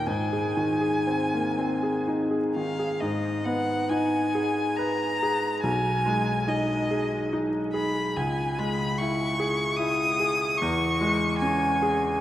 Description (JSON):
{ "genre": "classical, romantic duo for violin and grand piano", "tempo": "59-77 BPM", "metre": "3/4", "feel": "rubato", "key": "Ab major, G# minor from 3.0 s", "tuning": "A4 = 440 Hz", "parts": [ { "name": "rich violin", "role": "melody", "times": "0.0-12.2 s", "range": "D#5 to D#6", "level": "-28 LUFS", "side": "left 1 dB", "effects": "none" }, { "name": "bright grand piano", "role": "accompaniment", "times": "0.0-12.2 s", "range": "B1 to B4", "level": "-25 LUFS", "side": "equal", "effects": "none" } ], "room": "wet cathedral reverb, RT60 4.8 s", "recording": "in a vast, echoing space, vinyl crackle", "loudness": "-23 LUFS", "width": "side -13 dB against mid", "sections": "0.0-3.0 A section; 3.0-12.2 B section", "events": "none", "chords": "0.1 Ab; 3.0 G#m; 5.6 G#m/B; 8.2 C#m; 10.6 C#m/E" }